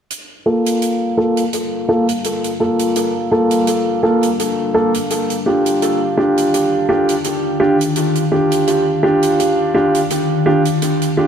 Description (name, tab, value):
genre	ambient dub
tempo	84 BPM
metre	4/4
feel	swing 55% on 16ths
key	G minor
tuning	A4 = 440 Hz
part	deep dark ambient pad	sustained chords	1.1-11.3 s	Eb3 to G5	-22 LUFS	left 2 dB	chorus, built-in reverb
part	hi-hat	drums	0.1-11.1 s	none	-27 LUFS	right 4 dB	studio reverb
part	dark upright piano	stabs	0.5-11.3 s	Bb3 to A4	-14 LUFS	equal	low-pass filter, dub echo
room	moderate echo chamber reverb, RT60 2.5 s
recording	none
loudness	-14 LUFS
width	side -8 dB against mid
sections	0.1-11.3 A section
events	fade-in on ambient pad 0.1-11.3; filter sweep on upright piano 0.1-11.3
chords	0.1 Gm9; 5.8 Ebmaj7